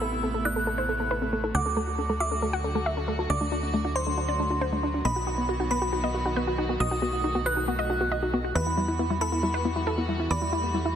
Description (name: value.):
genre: trance.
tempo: 137 BPM.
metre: 4/4.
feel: straight.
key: E minor.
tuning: A4 = 439 Hz.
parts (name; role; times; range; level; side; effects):
wide unison pluck; melody; 0.0-10.9 s; D4 to F#5; -30 LUFS; right 1 dB; tape echo.
glassy synth bell; second line; 0.0-10.9 s; B5 to F#6; -31 LUFS; right 1 dB; chorus, tape echo.
warm studio string section; sustained chords; 0.0-11.0 s; C3 to F#4; -34 LUFS; right 1 dB; none.
wide unison pluck; arpeggios; 0.0-10.9 s; G3 to F#4; -33 LUFS; left 2 dB; tape echo.
tight sequencer bass; bass; 0.0-11.0 s; A1 to E2; -31 LUFS; equal; none.
room: moderate lush hall reverb, RT60 2.8 s.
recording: dense, heavily limited modern master.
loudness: -24 LUFS.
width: side -9 dB against mid.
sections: 0.0-11.0 A section.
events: filter sweep on synth arpeggio sound 0.0-11.0.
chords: 0.0 Amadd9; 1.5 D; 5.0 B; 8.6 Emadd9.